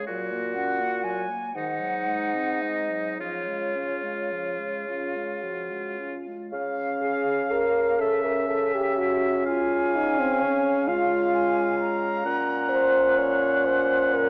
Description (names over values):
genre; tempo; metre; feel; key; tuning
classical, slow romantic movement for wind quintet; 35-44 BPM (dotted quarters); 6/8; rubato; Db major; A4 = 440 Hz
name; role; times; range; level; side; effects
silver concert flute; melody; 0.0-14.3 s; Db5 to Bb5; -34 LUFS; equal; none
bright oboe; second line; 0.0-14.3 s; Eb4 to Gb5; -32 LUFS; equal; none
clear French horn; accompaniment; 0.0-14.3 s; C4 to Db5; -28 LUFS; equal; none
dark clarinet; accompaniment; 0.0-14.3 s; Eb3 to Db4; -38 LUFS; equal; none
mellow bassoon; bass; 0.0-14.3 s; Ab2 to Db3; -33 LUFS; equal; none
room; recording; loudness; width
moderate concert hall reverb, RT60 2.0 s; worn, warbling old tape, cassette tape, warbly pitch drift, small speaker sound; -25 LUFS; mono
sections
0.0-6.5 A section; 6.5-14.3 A section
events
none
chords
0.1 Gb/Bb; 1.6 Ab7; 3.2 Db; 8.0 A13b9/C#; 9.5 Db; 12.2 Gb/Bb